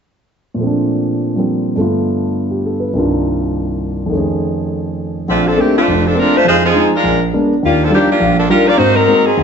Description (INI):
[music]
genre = jazz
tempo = 206 BPM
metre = 4/4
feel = swing 60% on 8ths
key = Bb major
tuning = A4 = 436 Hz
[part]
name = dark concert grand piano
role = accompaniment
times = 0.5-9.4 s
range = F1 to B4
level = -14 LUFS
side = right 1 dB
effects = none
[part]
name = clear saxophone section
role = melody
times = 5.3-9.4 s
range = Eb3 to D5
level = -12 LUFS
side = left 1 dB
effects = none
[sound]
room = moderate large studio reverb, RT60 1.3 s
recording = nothing above 7.8 kHz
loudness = -12 LUFS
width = side -6 dB against mid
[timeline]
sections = 0.6-5.3 A section; 5.3-9.4 B section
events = none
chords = 0.6 Bbmaj9; 1.8 G7; 3.0 Cm11; 4.1 F7alt; 5.3 Bbmaj9; 6.5 Fm7; 7.0 Bb7b9; 7.6 Ebmaj9; 8.8 Ab9